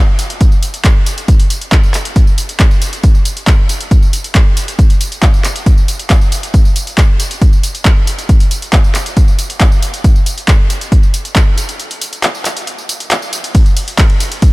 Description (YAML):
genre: techno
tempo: 137 BPM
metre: 4/4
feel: straight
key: none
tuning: none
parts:
  - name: punchy analog drum machine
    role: drums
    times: 0.2-14.5 s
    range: handclaps, hi-hat, ride cymbal, tambourine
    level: -17 LUFS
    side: equal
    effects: none
  - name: electronic kick drum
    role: drums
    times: 0.4-14.5 s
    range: none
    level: -9 LUFS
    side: equal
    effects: none
room: little or no reverb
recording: none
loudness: -9 LUFS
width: side -23 dB against mid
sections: 0.0-14.5 A section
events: break 11.8-13.5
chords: none